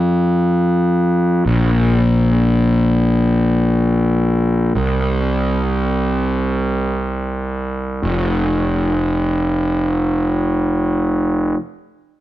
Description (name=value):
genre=rock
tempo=free time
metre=none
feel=none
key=unclear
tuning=A4 = 440 Hz
part: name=fuzz picked electric bass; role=bass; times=0.0-11.5 s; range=F1 to F2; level=-15 LUFS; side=equal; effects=overdrive
room=light reverb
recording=band playing live in one room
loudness=-15 LUFS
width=side -14 dB against mid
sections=0.0-8.0 A section; 8.0-11.3 B section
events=none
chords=none